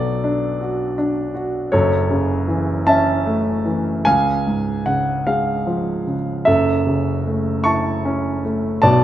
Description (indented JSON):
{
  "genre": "classical, lyrical solo piano",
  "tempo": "51 BPM (dotted quarters)",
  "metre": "6/8",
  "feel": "rubato",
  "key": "F# minor",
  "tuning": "A4 = 440 Hz",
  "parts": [
    { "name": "warm grand piano", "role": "solo", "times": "0.0-9.0 s", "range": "F#1 to C#6", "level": "-16 LUFS", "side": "equal", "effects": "none" }
  ],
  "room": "moderate recital hall reverb, RT60 1.3 s",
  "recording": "none",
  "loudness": "-17 LUFS",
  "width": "side -12 dB against mid",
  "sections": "0.0-9.0 A section",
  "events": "none",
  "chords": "0.0 Bm7; 1.7 F#m7; 4.1 C#; 6.5 F#m7"
}